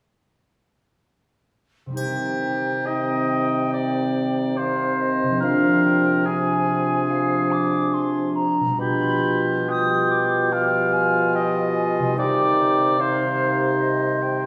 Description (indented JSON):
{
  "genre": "classical, slow romantic movement for symphony orchestra",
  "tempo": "72 BPM",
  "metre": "4/4",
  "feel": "rubato",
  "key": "C minor",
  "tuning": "A4 = 441 Hz",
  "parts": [
    { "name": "concert harp", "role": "arpeggios", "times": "1.9-14.5 s", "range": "B2 to G4", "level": "-32 LUFS", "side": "equal", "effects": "none" },
    { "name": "clear clarinet", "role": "second line", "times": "2.0-14.5 s", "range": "Eb4 to F4", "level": "-31 LUFS", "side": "equal", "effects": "none" },
    { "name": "silver concert flute", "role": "second line", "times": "2.0-14.5 s", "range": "Eb5 to Eb6", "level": "-30 LUFS", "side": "equal", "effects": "none" },
    { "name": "warm oboe", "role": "second line", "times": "2.0-14.5 s", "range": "G4 to G5", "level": "-25 LUFS", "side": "equal", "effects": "none" },
    { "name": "warm bassoon", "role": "accompaniment", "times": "2.0-14.5 s", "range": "B2 to C3", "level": "-30 LUFS", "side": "equal", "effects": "none" },
    { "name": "dark French horn section", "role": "sustained chords", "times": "2.0-14.5 s", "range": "Eb3 to G4", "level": "-28 LUFS", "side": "equal", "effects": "none" },
    { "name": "triangle", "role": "percussion", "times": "2.0-3.7 s", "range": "none", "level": "-46 LUFS", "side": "equal", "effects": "none" }
  ],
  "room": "wet scoring stage reverb, RT60 1.8 s",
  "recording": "recorded in a church or concert hall",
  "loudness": "-21 LUFS",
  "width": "mono",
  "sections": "2.0-14.5 A section",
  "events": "none",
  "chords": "2.0 Cm; 5.4 Dm7b5/C; 8.8 G7/B; 12.2 Cm",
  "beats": "| 1.97 2.88 3.74 4.58 | 5.42 6.26 7.09 7.93 | 8.78 9.68 10.52 11.36 | 12.18 13.01 13.82"
}